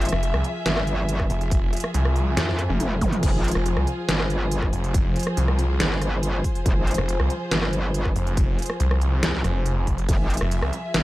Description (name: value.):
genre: heavy wobble dubstep.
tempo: 140 BPM.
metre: 4/4.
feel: half-time.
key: F harmonic minor.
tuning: A4 = 443 Hz.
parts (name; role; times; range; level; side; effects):
dark studio string section; sustained chords; 0.0-11.0 s; F3 to E5; -29 LUFS; equal; sidechain pumping.
metallic wobble bass; bass; 0.0-11.0 s; F1 to F2; -24 LUFS; equal; distortion, chorus, overdrive.
dubstep drum kit; drums; 0.0-11.0 s; crash cymbal, hi-hat, ride cymbal, rim click, snare drum, toms; -27 LUFS; equal; small room ambience.
snarling distorted saw bass; bass; 0.1-10.7 s; F1 to C2; -22 LUFS; equal; distortion, overdrive.
electronic kick drum; drums; 1.2-10.2 s; none; -23 LUFS; equal; small room ambience.
zap; sound effects; 3.0-3.1 s; none; -35 LUFS; equal; none.
room: little or no reverb.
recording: dark, warm production.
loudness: -20 LUFS.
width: side -17 dB against mid.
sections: 0.0-11.0 A section.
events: drum fill 2.4-3.2.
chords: 0.0 Fm.